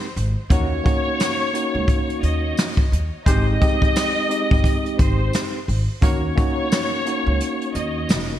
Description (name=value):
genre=hip hop, boom-bap hip-hop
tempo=87 BPM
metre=4/4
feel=swing 59% on 16ths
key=unclear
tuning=A4 = 440 Hz
part: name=mellow tine electric piano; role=accompaniment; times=0.0-8.4 s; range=Ab3 to G4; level=-25 LUFS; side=equal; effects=medium stereo tremolo, high-pass filter, low-pass filter
part: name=upright bass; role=bass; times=0.2-8.4 s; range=F1 to Eb2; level=-22 LUFS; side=equal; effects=none
part: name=jazz brush drum kit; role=drums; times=0.2-8.3 s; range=hi-hat, kick drum, rim click, snare drum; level=-20 LUFS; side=equal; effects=gated reverb
part: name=warm symphonic violin section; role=melody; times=0.5-8.3 s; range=C5 to Eb5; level=-25 LUFS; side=left 1 dB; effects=high-pass filter, low-pass filter, ping-pong delay
part: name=warm horn section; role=stabs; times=0.5-6.2 s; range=Ab3 to Db5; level=-31 LUFS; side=left 1 dB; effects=high-pass filter, low-pass filter, ping-pong delay
part: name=tambourine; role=percussion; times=1.2-8.3 s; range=none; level=-40 LUFS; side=left 6 dB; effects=none
room=light reverb, studio ambience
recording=bright 1980s-style digital production, vinyl crackle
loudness=-18 LUFS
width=side -11 dB against mid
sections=0.0-8.4 A section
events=break 7.4-8.4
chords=0.0 N.C.; 0.5 Ebm7; 3.3 Abmaj7; 6.0 Ebm7